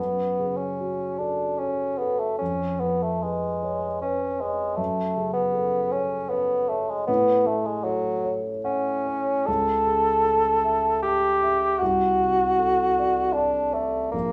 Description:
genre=classical, romantic duo for bassoon and grand piano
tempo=77 BPM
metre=3/4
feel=uneven beats, rubato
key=F# minor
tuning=A4 = 440 Hz
part: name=clear bassoon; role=melody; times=0.0-14.3 s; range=F#3 to A4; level=-25 LUFS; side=equal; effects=none
part: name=dark baby grand piano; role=accompaniment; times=0.0-14.3 s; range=Bb1 to A5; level=-32 LUFS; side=equal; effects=none
room=moderate studio reverb, RT60 0.7 s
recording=studio reverb, faint mains hum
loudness=-24 LUFS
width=mono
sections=0.0-14.3 A section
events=none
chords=0.0 F#m; 2.4 C#7/E#; 4.8 F#m; 7.1 F#m/A; 9.5 A/C#; 11.8 D7/C

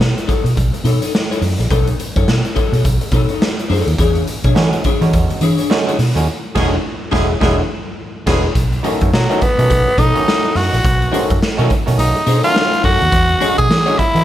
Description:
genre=funk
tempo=105 BPM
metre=4/4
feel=swing 60% on 16ths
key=B mixolydian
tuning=A4 = 440 Hz
part: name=electric guitar at the edge of break-up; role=accompaniment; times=0.0-14.2 s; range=D4 to C#5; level=-22 LUFS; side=left 5 dB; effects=analog chorus
part: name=vintage muted fingered electric bass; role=bass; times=0.0-14.2 s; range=E1 to E3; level=-17 LUFS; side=equal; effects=none
part: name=raw garage drum kit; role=drums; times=0.0-14.2 s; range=crash cymbal, hi-hat, kick drum, snare drum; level=-18 LUFS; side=equal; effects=none
part: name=overdriven clav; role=stabs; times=4.6-14.2 s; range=D3 to E4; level=-22 LUFS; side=right 4 dB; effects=none
part: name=warm horn section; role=second line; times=6.6-8.4 s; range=D3 to G#4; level=-24 LUFS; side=right 2 dB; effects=none
part: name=raspy tenor saxophone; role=melody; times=9.1-14.2 s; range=F#3 to G#4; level=-15 LUFS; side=equal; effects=none
room=light reverb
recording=none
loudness=-13 LUFS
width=side -12 dB against mid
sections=0.0-8.6 A section; 8.6-14.2 B section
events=band accent 6.3-8.6; tenor saxophone solo 8.6-14.2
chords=0.0 B9; 4.0 E13; 8.6 B9; 13.1 E13

